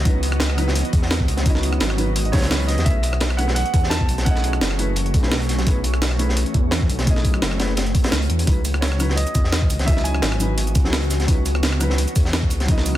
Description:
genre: liquid drum and bass.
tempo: 171 BPM.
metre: 4/4.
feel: swing 53% on 16ths.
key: C# minor.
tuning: A4 = 440 Hz.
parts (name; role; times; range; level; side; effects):
felt-muted upright piano; accompaniment; 0.0-13.0 s; F#3 to D#5; -28 LUFS; left 1 dB; tape echo.
shimmering ambient pad; sustained chords; 0.0-13.0 s; E3 to D#5; -29 LUFS; equal; chorus, built-in reverb, sidechain pumping.
dark detuned saw bass; bass; 0.0-13.0 s; F#1 to E2; -21 LUFS; equal; none.
breakbeat sampler-style drum kit; drums; 0.1-13.0 s; hi-hat, rim click, shaker, snare drum; -26 LUFS; right 1 dB; none.
crunchy breakbeat drum kit; drums; 0.1-13.0 s; hi-hat, snare drum; -28 LUFS; equal; high-pass filter on hats, high-pass filter on snare, high-pass filter on room.
electronic kick drum; drums; 0.1-12.8 s; none; -19 LUFS; equal; none.
clear concert grand piano; melody; 2.3-4.6, 8.8-10.7 s; C#5 to A5; -29 LUFS; right 3 dB; vintage 12-bit sampler grit, dub echo.
room: small room reverb.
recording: dense, heavily limited modern master.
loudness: -17 LUFS.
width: side -13 dB against mid.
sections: 0.0-13.0 A section.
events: none.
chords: 0.0 C#m11; 2.9 B13sus4; 8.5 C#m11.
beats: | 0.05 0.40 0.75 1.10 | 1.46 1.81 2.16 2.51 | 2.86 3.21 3.56 3.91 | 4.26 4.61 4.96 5.32 | 5.67 6.02 6.37 6.72 | 7.07 7.42 7.77 8.12 | 8.47 8.82 9.18 9.53 | 9.88 10.23 10.58 10.93 | 11.28 11.63 11.98 12.33 | 12.68.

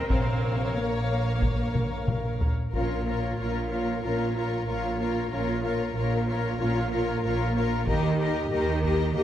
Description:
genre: cinematic, epic orchestral film score.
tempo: 93 BPM.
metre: 4/4.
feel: straight.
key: Bb dorian.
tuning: A4 = 441 Hz.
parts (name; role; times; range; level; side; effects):
rich symphonic violin section; melody; 0.0-9.2 s; Db5 to F5; -37 LUFS; left 4 dB; none.
warm symphonic violin section; second line; 0.0-9.2 s; Bb4 to Db5; -33 LUFS; left 5 dB; none.
rich symphonic viola section; accompaniment; 0.0-9.2 s; F4 to Bb4; -31 LUFS; equal; none.
mellow French horn section; sustained chords; 0.0-9.2 s; C3 to G4; -37 LUFS; left 3 dB; none.
rich studio double bass section; bass; 0.0-9.2 s; Bb1 to Eb2; -30 LUFS; right 1 dB; none.
rich symphonic cello section; bass; 0.0-9.2 s; Bb2 to C4; -31 LUFS; right 3 dB; none.
taiko ensemble; drums; 0.1-9.1 s; none; -28 LUFS; left 1 dB; none.
room: moderate concert hall reverb, RT60 1.9 s.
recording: none.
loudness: -24 LUFS.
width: side -11 dB against mid.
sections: 0.0-2.7 A section; 2.7-9.2 B section.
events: drum fill 1.8-2.7.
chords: 0.1 Bbm; 7.9 Eb.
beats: | 0.10 0.77 1.42 2.08 | 2.74 3.39 4.04 4.68 | 5.32 5.96 6.60 7.24 | 7.87 8.51 9.16.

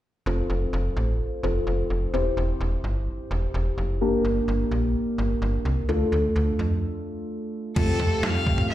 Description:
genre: synth-pop.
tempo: 128 BPM.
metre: 4/4.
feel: straight.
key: F major.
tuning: A4 = 440 Hz.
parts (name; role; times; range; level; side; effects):
muted felt-like synth keys; accompaniment; 0.3-8.7 s; A3 to C5; -27 LUFS; left 1 dB; chorus, phaser, low-pass filter.
slap-like FM bass; bass; 0.3-8.7 s; E1 to F2; -25 LUFS; equal; none.
rich violin; melody; 7.8-8.7 s; A4 to F5; -28 LUFS; left 1 dB; none.
brassy analog pad; sustained chords; 7.8-8.7 s; F3 to G4; -31 LUFS; right 2 dB; chorus, tremolo.
detuned 8-bit digital drum machine; drums; 7.8-8.7 s; crash cymbal, kick drum, snare drum, toms; -25 LUFS; equal; overdrive.
room: moderate plate reverb, RT60 2.1 s.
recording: played on a big sound system in a bare room, large studio reverb.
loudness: -23 LUFS.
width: side -13 dB against mid.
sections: 0.3-7.8 A section.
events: filter sweep on synth keys 0.3-7.8; break 6.8-7.8.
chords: 0.3 F; 2.1 C/E; 4.0 Gm; 5.9 Dm; 7.8 Fadd9.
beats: | 0.26 0.73 1.20 1.67 | 2.14 2.61 3.08 3.54 | 4.01 4.48 4.95 5.42 | 5.89 6.36 6.83 7.29 | 7.76 8.23 8.70.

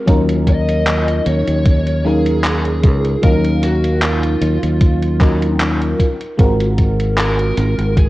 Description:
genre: vaporwave.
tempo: 76 BPM.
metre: 4/4.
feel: swing 54% on 16ths.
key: Eb dorian.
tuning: A4 = 440 Hz.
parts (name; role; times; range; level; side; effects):
FM electric piano with soft pad layer; accompaniment; 0.0-8.1 s; Gb3 to F5; -19 LUFS; equal; lush chorus.
fingered electric bass; bass; 0.1-8.1 s; Ab1 to Eb2; -17 LUFS; equal; none.
electronic kick drum; drums; 0.1-8.1 s; none; -13 LUFS; equal; none.
gated 80s digital drum machine; drums; 0.1-8.1 s; handclaps, hi-hat; -23 LUFS; equal; gated reverb.
lead guitar through a small cranked amp; melody; 0.5-8.1 s; F4 to Eb5; -22 LUFS; equal; overdrive, tape echo.
room: little or no reverb.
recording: worn, warbling old tape, cassette tape, warbly pitch drift.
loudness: -13 LUFS.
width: side -17 dB against mid.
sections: 0.0-8.1 A section.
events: none.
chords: 0.1 Ebm9; 6.0 Ab13.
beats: | 0.08 0.87 1.66 2.45 | 3.24 4.03 4.82 5.60 | 6.39 7.18 7.97.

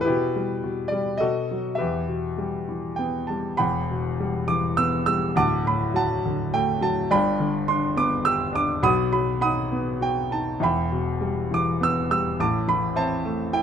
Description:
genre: classical, lyrical solo piano.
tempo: 102 BPM.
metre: 3/4.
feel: rubato.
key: E minor.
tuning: A4 = 443 Hz.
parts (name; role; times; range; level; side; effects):
clear grand piano; solo; 0.0-13.6 s; D1 to E6; -21 LUFS; equal; none.
room: light reverb.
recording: close, detailed microphones.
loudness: -22 LUFS.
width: side -8 dB against mid.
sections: 0.0-3.6 A section; 3.6-13.6 A section.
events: none.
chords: 0.1 Em/B; 1.2 B7; 1.8 Em; 3.6 Emadd9; 5.4 Dadd11; 7.1 G; 8.8 B; 10.6 Em; 12.4 Am.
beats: | 0.07 0.64 1.21 | 1.79 2.37 2.98 | 3.59 4.19 4.78 | 5.37 5.96 6.55 | 7.12 7.69 8.25 | 8.83 9.42 10.02 | 10.62 11.22 11.82 | 12.40 12.97 13.54.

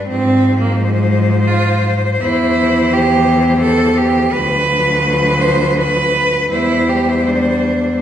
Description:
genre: classical, lyrical piece for cello ensemble.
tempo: 84 BPM.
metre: 3/4.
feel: uneven beats, rubato.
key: C major.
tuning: A4 = 440 Hz.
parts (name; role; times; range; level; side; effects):
rich cello; melody; 0.0-8.0 s; B4 to C5; -20 LUFS; left 4 dB; none.
rich cello; second line; 0.0-8.0 s; Ab3 to C5; -16 LUFS; right 3 dB; none.
warm cello; accompaniment; 0.0-8.0 s; E3 to G3; -24 LUFS; left 3 dB; none.
rich cello; bass; 0.0-8.0 s; D2 to Ab2; -16 LUFS; equal; none.
room: wet recital hall reverb, RT60 1.4 s.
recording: recorded in a church or concert hall, nothing above 10.4 kHz.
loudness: -12 LUFS.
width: side -10 dB against mid.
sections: 0.0-8.0 A section.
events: none.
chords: 0.1 Fm/Ab; 2.2 C/E; 4.3 Bdim/D; 6.5 C/E.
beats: | 0.09 0.79 1.48 | 2.21 2.92 3.62 | 4.33 5.05 5.78 | 6.52 7.27.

